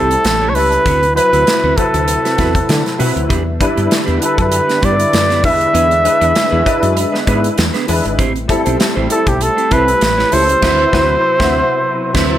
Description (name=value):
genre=polished 1980s jazz-funk pop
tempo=98 BPM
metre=4/4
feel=swing 54% on 16ths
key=E minor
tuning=A4 = 440 Hz
part: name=warm flugelhorn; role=melody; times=0.0-12.4 s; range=G4 to E5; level=-14 LUFS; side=equal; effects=none
part: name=warm grand piano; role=accompaniment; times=0.0-12.4 s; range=F#3 to C5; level=-19 LUFS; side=left 2 dB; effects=ensemble chorus
part: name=chorused pulse-width pad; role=sustained chords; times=0.0-12.4 s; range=B2 to B4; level=-26 LUFS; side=equal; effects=none
part: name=mellow electric guitar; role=riff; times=0.0-12.4 s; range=A3 to C#5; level=-22 LUFS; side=right 6 dB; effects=analog chorus
part: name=woody fretless electric bass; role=bass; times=0.0-12.4 s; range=G#1 to D3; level=-18 LUFS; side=equal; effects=lush chorus
part: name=modern studio drum kit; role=drums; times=0.1-12.4 s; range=crash cymbal, hi-hat, kick drum, snare drum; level=-18 LUFS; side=equal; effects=gated reverb
room=light reverb, small room ambience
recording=none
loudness=-11 LUFS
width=side -12 dB against mid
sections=0.0-12.4 A section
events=band accent 10.6-12.4; drum fill 11.8-12.4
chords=0.2 A7; 0.9 D13; 3.3 Em7; 5.4 E7; 8.2 Am7; 10.0 A7; 10.6 D13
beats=0.25 | 0.86 1.47 2.08 2.69 | 3.30 3.91 4.52 5.13 | 5.75 6.36 6.97 7.58 | 8.19 8.80 9.41 10.02 | 10.63 11.24 11.85